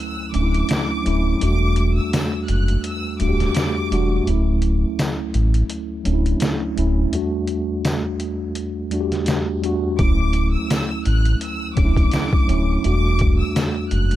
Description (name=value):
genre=hip hop, boom-bap hip-hop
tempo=84 BPM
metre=4/4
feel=swing 54% on 16ths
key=D major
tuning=A4 = 437 Hz
part: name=warm studio violin section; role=melody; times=0.0-4.2, 10.0-14.2 s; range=D6 to F#6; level=-28 LUFS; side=left 1 dB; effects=digital delay
part: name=mellow tine electric piano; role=accompaniment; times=0.0-14.2 s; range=D2 to G4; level=-22 LUFS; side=equal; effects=medium stereo tremolo
part: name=sub bass with octave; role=bass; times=0.3-14.2 s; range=D1 to A1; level=-18 LUFS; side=equal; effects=none
part: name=trip hop sampler-style drum kit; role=drums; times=0.3-14.2 s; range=hi-hat, kick drum, snare drum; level=-22 LUFS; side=equal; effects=none
part: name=tambourine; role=percussion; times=0.7-13.7 s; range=none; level=-40 LUFS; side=left 5 dB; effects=none
room=little or no reverb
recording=none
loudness=-18 LUFS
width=side -14 dB against mid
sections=0.0-14.2 A section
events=break 0.0-10.0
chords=0.0 Dmaj9; 1.4 Em11; 4.3 Dmaj9; 7.1 Em11; 10.0 Dmaj9; 12.8 Em11